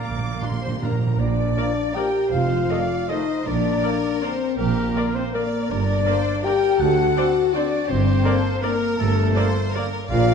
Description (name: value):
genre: classical, orchestral ballroom waltz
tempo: 161 BPM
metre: 3/4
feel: uneven beats, rubato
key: Bb major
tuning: A4 = 439 Hz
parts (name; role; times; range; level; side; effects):
- rich studio violin section; melody; 0.0-10.3 s; F4 to D6; -32 LUFS; left 3 dB; none
- mellow hollow silver concert flute; second line; 0.0-10.3 s; A4 to Bb5; -30 LUFS; left 2 dB; none
- warm clarinet; second line; 0.0-1.0 s; D5; -41 LUFS; left 1 dB; none
- warm oboe; second line; 0.0-10.3 s; A4 to G5; -33 LUFS; right 1 dB; none
- rich studio cello section; bass; 0.0-10.3 s; D2 to Bb3; -31 LUFS; right 4 dB; none
- timpani; percussion; 0.0-2.9 s; F2 to Bb2; -27 LUFS; right 3 dB; none
- rich studio double bass section; bass; 0.1-10.3 s; F1 to D2; -24 LUFS; right 4 dB; none
- rich studio violin section; second line; 0.4-10.3 s; A4 to G5; -34 LUFS; left 4 dB; none
- rich studio viola section; accompaniment; 0.4-9.8 s; D4 to Eb5; -32 LUFS; equal; none
- dark French horn section; sustained chords; 0.4-10.3 s; A3 to G4; -23 LUFS; left 5 dB; none
- clear trombone section; sustained chords; 1.6-9.9 s; D3 to C4; -34 LUFS; right 4 dB; none
room: wet scoring stage reverb, RT60 1.6 s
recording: dark, warm production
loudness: -19 LUFS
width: side -6 dB against mid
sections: 0.0-1.2 A section; 1.2-10.3 B section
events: timpani fill 0.0-1.2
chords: 0.0 Bb; 2.3 F7; 3.5 Bb; 5.7 Gm; 6.8 D7; 7.9 Gm